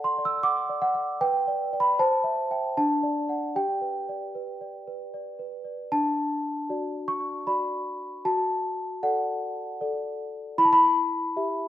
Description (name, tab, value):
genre	classical, lullaby for celesta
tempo	77 BPM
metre	3/4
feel	straight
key	G major, D major from 5.9 s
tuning	A4 = 441 Hz
part	celesta	solo	0.0-11.7 s	D4 to E6	-24 LUFS	equal	slapback echo
room	moderate lush hall reverb, RT60 2.2 s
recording	rough home demo mix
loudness	-24 LUFS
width	side -12 dB against mid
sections	0.0-5.9 A section; 5.9-11.7 B section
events	none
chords	0.0 D/A; 1.2 G/B; 2.0 C; 2.8 D; 3.6 G; 5.9 D; 8.3 D/F#; 10.6 Em